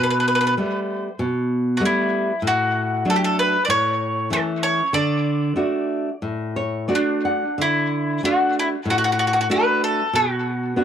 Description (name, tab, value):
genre	fado-style ballad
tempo	95 BPM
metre	4/4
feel	rubato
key	D major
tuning	A4 = 442 Hz
part	bowl-back mandolin	melody	0.0-10.8 s	D4 to D5	-20 LUFS	equal	analog delay
part	nylon-string guitar	accompaniment	0.0-10.8 s	A2 to F#5	-22 LUFS	equal	none
room	moderate studio ambience, RT60 0.5 s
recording	dry, gritty hardware recording, transformer saturation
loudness	-18 LUFS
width	side -8 dB against mid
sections	0.0-7.6 A section; 7.6-10.8 A section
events	nylon-string guitar fill 6.2-7.6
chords	0.0 Gadd9/B; 2.4 D/A; 3.7 A; 4.9 D; 10.1 B5